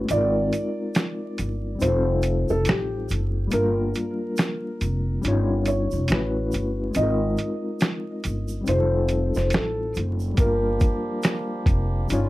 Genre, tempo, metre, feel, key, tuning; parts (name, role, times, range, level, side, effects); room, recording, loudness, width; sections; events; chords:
lo-fi hip hop; 70 BPM; 4/4; swing 59% on 16ths; G minor; A4 = 440 Hz
felt-muted upright piano; melody; 0.0-12.3 s; G4 to Eb5; -28 LUFS; equal; low-pass filter, plate reverb
mellow reed electric piano; accompaniment; 0.0-12.3 s; G3 to Db5; -27 LUFS; left 2 dB; fast tremolo, cassette tape, low-pass filter, plate reverb
upright bass; bass; 0.0-12.3 s; F1 to A1; -25 LUFS; equal
lo-fi sampler-style drum kit; drums; 0.1-12.3 s; hi-hat, kick drum, snare drum; -23 LUFS; equal; overdrive
egg shaker; percussion; 0.1-12.3 s; -45 LUFS; right 7 dB
hand-pumped harmonium; sustained chords; 10.4-12.3 s; Db3 to G4; -33 LUFS; right 3 dB; low-pass filter, plate reverb
light reverb; dark, warm production, vinyl crackle; -21 LUFS; side -17 dB against mid
0.0-12.3 A section
break 0.0-10.4
0.1 Ab69; 1.8 F9; 3.5 Gm7; 5.2 Eb9/G; 6.1 A69; 7.0 Ab69; 8.7 F9; 10.4 Gm7